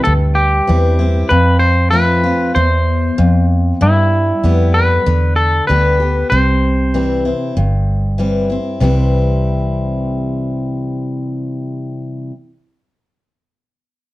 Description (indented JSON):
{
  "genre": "honky-tonk and classic country",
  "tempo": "96 BPM",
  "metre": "4/4",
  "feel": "straight",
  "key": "C major",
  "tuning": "A4 = 440 Hz",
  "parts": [
    { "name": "twangy electric guitar", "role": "melody", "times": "0.0-8.1 s", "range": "E4 to C5", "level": "-16 LUFS", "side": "equal", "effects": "none" },
    { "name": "picked steel-string acoustic guitar", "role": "accompaniment", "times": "0.0-12.3 s", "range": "E2 to G4", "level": "-18 LUFS", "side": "left 2 dB", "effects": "none" },
    { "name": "vintage muted fingered electric bass", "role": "bass", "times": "0.1-11.9 s", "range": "G1 to G2", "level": "-15 LUFS", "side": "equal", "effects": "none" }
  ],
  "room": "light reverb",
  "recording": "dark, warm production",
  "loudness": "-12 LUFS",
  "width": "side -17 dB against mid",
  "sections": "0.0-8.8 A section; 8.8-11.3 B section",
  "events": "none",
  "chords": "0.0 C; 1.3 F; 3.8 G; 6.3 C"
}